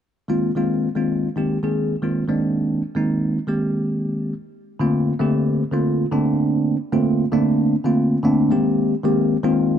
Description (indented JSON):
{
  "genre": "jazz",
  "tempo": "113 BPM",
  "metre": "4/4",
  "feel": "straight",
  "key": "Bb mixolydian",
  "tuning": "A4 = 441 Hz",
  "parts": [
    { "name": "bell-like tine electric piano", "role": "accompaniment", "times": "0.3-9.8 s", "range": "D3 to Ab4", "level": "-18 LUFS", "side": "equal", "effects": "phaser" }
  ],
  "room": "little or no reverb",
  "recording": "dry, close 1970s-style studio recording",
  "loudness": "-18 LUFS",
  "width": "side -9 dB against mid",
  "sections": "0.3-4.5 A section; 4.5-9.8 B section",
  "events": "none",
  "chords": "0.3 Bb7sus4; 4.5 Bbmaj9; 8.5 Abmaj9",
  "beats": "| 0.29 0.82 1.36 1.89 | 2.42 2.95 3.48 4.01 | 4.54 5.07 5.60 6.13 | 6.66 7.19 7.72 8.25 | 8.78 9.30"
}